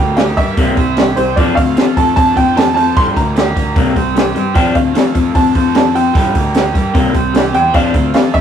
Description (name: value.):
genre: indie rock.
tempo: 151 BPM.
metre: 4/4.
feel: straight.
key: unclear.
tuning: A4 = 435 Hz.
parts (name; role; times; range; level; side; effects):
dark upright piano; melody; 0.0-8.4 s; C5 to C6; -16 LUFS; right 3 dB; none.
electric guitar through a small old amp; riff; 0.0-8.4 s; G2 to D4; -16 LUFS; left 5 dB; none.
overdriven electric guitar; riff; 0.0-8.4 s; C3 to C5; -21 LUFS; right 5 dB; none.
fuzz fingered electric bass; bass; 0.0-8.4 s; C2 to G2; -20 LUFS; right 1 dB; overdrive.
compact cocktail drum kit; drums; 0.2-8.4 s; hi-hat, kick drum, snare drum; -15 LUFS; right 1 dB; none.
room: moderate studio reverb, RT60 0.5 s.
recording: rough rehearsal-room recording, warm saturation.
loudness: -10 LUFS.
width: side -8 dB against mid.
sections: 0.0-8.4 A section.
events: none.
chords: 0.0 Gm; 0.6 C7; 1.4 F6; 3.0 Gm7; 3.8 C5; 4.6 F6; 6.2 Gm7; 7.0 C7; 7.7 F6.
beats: 0.18 0.57 0.97 | 1.37 1.77 2.17 2.57 | 2.97 3.37 3.77 4.16 | 4.56 4.96 5.36 5.76 | 6.16 6.55 6.95 7.35 | 7.75 8.14.